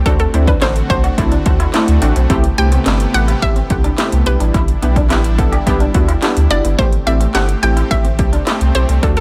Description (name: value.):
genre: dance-pop.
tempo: 107 BPM.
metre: 4/4.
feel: straight.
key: A dorian.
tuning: A4 = 443 Hz.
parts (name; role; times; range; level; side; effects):
hollow square pluck; melody; 0.0-9.2 s; A4 to G5; -23 LUFS; equal; chorus, phaser, tape echo.
supersaw pad; sustained chords; 0.0-9.2 s; C3 to G4; -26 LUFS; equal; sidechain pumping.
clean electric guitar; riff; 0.0-9.1 s; A3 to G4; -28 LUFS; equal; lush chorus, tape echo.
funky polysynth comp; accompaniment; 0.1-9.2 s; A3 to A4; -23 LUFS; equal; chorus, sidechain pumping, tape echo.
warm sub bass; bass; 0.1-9.2 s; F#1 to D2; -17 LUFS; equal; sidechain pumping.
house drum kit; drums; 0.1-9.2 s; handclaps, hi-hat, kick drum, snare drum; -20 LUFS; equal; overdrive, tape echo.
room: light reverb.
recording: echo-heavy mix.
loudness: -14 LUFS.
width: mono.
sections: 0.0-9.2 A section.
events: none.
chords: 0.1 D7; 2.3 Am7; 4.3 Em7; 6.8 Am7.